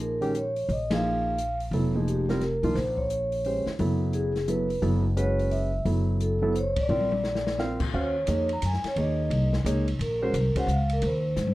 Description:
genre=modal jazz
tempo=174 BPM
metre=3/4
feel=swing 64% on 8ths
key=Eb dorian from 7.9 s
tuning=A4 = 435 Hz
part: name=vibraphone with soft mallets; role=melody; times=0.0-11.5 s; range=G4 to Bb5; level=-29 LUFS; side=equal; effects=none
part: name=warm concert grand piano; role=accompaniment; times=0.0-10.7 s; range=Eb3 to F5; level=-29 LUFS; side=right 1 dB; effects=none
part: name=upright bass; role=bass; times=0.0-11.5 s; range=F1 to Bb2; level=-28 LUFS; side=equal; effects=none
part: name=open jazz drum kit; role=drums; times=0.2-11.5 s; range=crash cymbal, hi-hat, kick drum, ride cymbal, snare drum, toms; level=-35 LUFS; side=left 2 dB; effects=none
room=little or no reverb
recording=dark, warm production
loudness=-24 LUFS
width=side -17 dB against mid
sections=0.0-7.9 A section; 7.9-11.5 B section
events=band accent 0.9, 6.7; drum fill 6.9-7.6, 11.4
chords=0.0 Bbm11; 3.8 Gbm11; 6.9 Bb; 7.9 Ebm11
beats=0.34 | 0.69 1.03 1.38 | 1.72 2.06 2.41 | 2.75 3.10 3.44 | 3.79 4.13 4.48 | 4.83 5.17 5.52 | 5.86 6.21 6.55 | 6.90 7.24 7.58 | 7.93 8.28 8.62 | 8.96 9.31 9.65 | 10.00 10.34 10.69 | 11.03 11.37

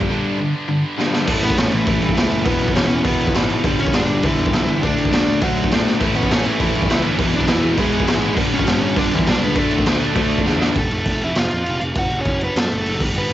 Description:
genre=punk rock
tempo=202 BPM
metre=4/4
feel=straight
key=A mixolydian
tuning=A4 = 440 Hz
part: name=distorted electric guitar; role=riff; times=0.0-10.8 s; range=E2 to D4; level=-24 LUFS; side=right 8 dB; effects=distortion, cassette tape
part: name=heavy high-gain guitar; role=riff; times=0.0-1.3, 6.0-10.8 s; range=G2 to E4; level=-26 LUFS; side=right 1 dB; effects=distortion, cassette tape
part: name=overdriven electric guitar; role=riff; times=0.0-10.8 s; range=E2 to D4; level=-22 LUFS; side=left 7 dB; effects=cassette tape
part: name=fuzz picked electric bass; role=bass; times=0.0-13.3 s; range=E1 to A2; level=-24 LUFS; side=equal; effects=overdrive
part: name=raw garage drum kit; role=drums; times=0.0-13.3 s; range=crash cymbal, kick drum, snare drum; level=-20 LUFS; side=equal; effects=cassette tape
part: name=overdriven electric guitar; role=melody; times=1.4-13.3 s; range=E3 to F#5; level=-23 LUFS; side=right 1 dB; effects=cassette tape, analog delay
room=little or no reverb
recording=home recording on cassette, nothing above 7.8 kHz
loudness=-16 LUFS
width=side -13 dB against mid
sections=0.0-1.3 A section; 1.3-10.8 B section; 10.8-13.3 C section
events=drum fill 1.0, 5.9, 10.5; half time 10.8-13.3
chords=0.0 G; 1.3 A; 2.5 E; 3.6 G5; 4.8 D; 6.0 A; 7.2 E; 8.4 G; 9.6 D; 10.8 F; 12.0 F#m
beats=| 0.10 0.39 0.69 0.99 | 1.28 1.58 1.88 2.17 | 2.47 2.76 3.06 3.35 | 3.65 3.94 4.24 4.53 | 4.83 5.12 5.42 5.71 | 6.01 6.30 6.60 6.90 | 7.19 7.49 7.79 8.08 | 8.38 8.68 8.98 9.27 | 9.57 9.87 10.17 10.46 | 10.76 11.06 11.36 11.66 | 11.96 12.26 12.56 12.86 | 13.15

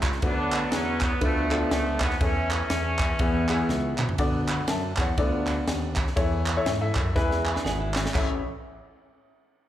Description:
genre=uptempo gospel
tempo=121 BPM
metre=4/4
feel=swing 60% on 8ths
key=A major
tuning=A4 = 440 Hz
part: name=smooth synth bass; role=bass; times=0.0-8.4 s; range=G#1 to G#2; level=-29 LUFS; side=equal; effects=none
part: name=crisp fusion drum kit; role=drums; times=0.0-8.3 s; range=crash cymbal, kick drum, ride cymbal, snare drum, toms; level=-28 LUFS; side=equal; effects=none
part: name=group handclap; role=percussion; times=0.0-8.4 s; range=none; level=-32 LUFS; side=right 3 dB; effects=none
part: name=warm horn section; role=melody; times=0.2-4.0 s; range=E3 to D4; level=-29 LUFS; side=right 1 dB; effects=slapback echo
part: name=warm upright piano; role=accompaniment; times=0.2-8.4 s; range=A1 to B5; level=-28 LUFS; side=left 3 dB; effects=slapback echo
part: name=clean electric guitar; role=second line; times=7.2-8.1 s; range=G#3 to B4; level=-35 LUFS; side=right 7 dB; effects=slapback echo
room=light reverb, small room ambience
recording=live gig heard through the venue's PA, club reverb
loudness=-23 LUFS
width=side -12 dB against mid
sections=0.0-4.2 A section; 4.2-8.1 B section; 8.1-9.7 C section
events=drum fill 3.7-4.2, 7.2-8.1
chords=0.2 D6; 1.2 Dm6; 2.2 A/E; 3.2 E; 4.2 D6; 5.2 Dm6; 6.2 A/E; 7.2 E; 8.1 A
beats=| 0.23 0.72 1.22 1.71 | 2.21 2.70 3.20 3.69 | 4.19 4.68 5.18 5.67 | 6.17 6.66 7.16 7.65 | 8.15

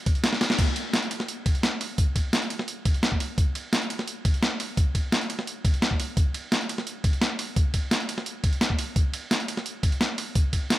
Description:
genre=drum and bass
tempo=172 BPM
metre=4/4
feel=straight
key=none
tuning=none
part: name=breakbeat sampler-style drum kit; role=drums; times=0.1-10.8 s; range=crash cymbal, hi-hat, ride cymbal, snare drum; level=-26 LUFS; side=equal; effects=none
part: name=electronic kick drum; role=drums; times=0.1-10.6 s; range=none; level=-23 LUFS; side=equal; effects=none
room=light reverb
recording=none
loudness=-23 LUFS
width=side -15 dB against mid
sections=0.6-10.8 A section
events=kick drops out 0.2-0.6; drum fill 0.3; band accent 0.5; drop 0.6-10.8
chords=none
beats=0.24 | 0.59 0.94 1.28 1.63 | 1.98 2.33 2.68 3.03 | 3.38 3.73 4.08 4.42 | 4.77 5.12 5.47 5.82 | 6.17 6.52 6.87 7.21 | 7.56 7.91 8.26 8.61 | 8.96 9.31 9.66 10.01 | 10.36 10.70

